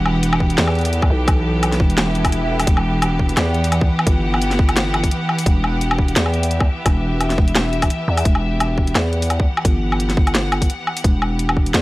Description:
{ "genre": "half-time drum and bass", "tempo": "172 BPM", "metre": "4/4", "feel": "swing 55% on 16ths, half-time", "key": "E minor", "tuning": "A4 = 440 Hz", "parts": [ { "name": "bright symphonic string section", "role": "sustained chords", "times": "0.0-11.8 s", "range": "E3 to F#5", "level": "-22 LUFS", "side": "equal", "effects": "sidechain pumping" }, { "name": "growling 808-style bass", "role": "bass", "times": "0.0-11.8 s", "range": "E1 to E2", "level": "-20 LUFS", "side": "equal", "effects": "none" }, { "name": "drum and bass drum kit", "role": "drums", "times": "0.1-11.8 s", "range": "hi-hat, snare drum, woodblock", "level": "-21 LUFS", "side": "equal", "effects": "overdrive, studio reverb" }, { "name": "electronic kick drum", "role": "drums", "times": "0.4-11.6 s", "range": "none", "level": "-17 LUFS", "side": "equal", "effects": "overdrive, studio reverb" }, { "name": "swell", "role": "sound effects", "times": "2.1-2.7 s", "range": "none", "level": "-27 LUFS", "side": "right 2 dB", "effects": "none" } ], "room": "little or no reverb", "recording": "dry, gritty hardware recording", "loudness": "-15 LUFS", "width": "side -19 dB against mid", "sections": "0.0-11.8 A section", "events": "swell 2.1-2.7", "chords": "0.0 Emadd9", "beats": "0.23 0.58 0.93 | 1.28 1.62 1.97 2.32 | 2.67 3.02 3.37 3.72 | 4.07 4.42 4.76 5.11 | 5.46 5.81 6.16 6.51 | 6.86 7.21 7.55 7.90 | 8.25 8.60 8.95 9.30 | 9.65 10.00 10.35 10.70 | 11.04 11.39 11.74" }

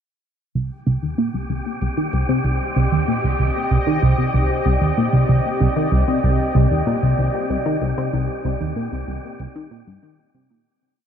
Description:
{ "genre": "ambient, sequencer-driven space music", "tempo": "95 BPM", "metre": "4/4", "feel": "straight", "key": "C minor", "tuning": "A4 = 440 Hz", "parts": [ { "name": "sweeping resonant pad", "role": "sustained chords", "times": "1.6-10.7 s", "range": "C4 to Eb5", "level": "-26 LUFS", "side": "equal", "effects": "chorus" }, { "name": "tight sequenced synth", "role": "riff", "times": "0.6-10.7 s", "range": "C2 to Eb3", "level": "-18 LUFS", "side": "equal", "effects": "chorus, phaser, vintage 12-bit sampler grit, ping-pong delay" }, { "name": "wind-like tuned noise texture", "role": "texture", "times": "1.2-10.7 s", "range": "G4 to G5", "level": "-27 LUFS", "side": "left 1 dB", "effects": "built-in reverb" } ], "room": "moderate huge ambient reverb, RT60 9.2 s", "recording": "in a vast, echoing space", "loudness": "-17 LUFS", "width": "side -8 dB against mid", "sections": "0.6-10.7 A section", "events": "fade-in on analog synth pad 0.6-10.7; fade-out 7.3-10.7", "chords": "0.6 Cm", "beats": "| 0.55 1.19 1.82 2.45 | 3.08 3.71 4.34 4.97 | 5.61 6.24 6.87 7.50 | 8.13 8.76 9.39 10.03" }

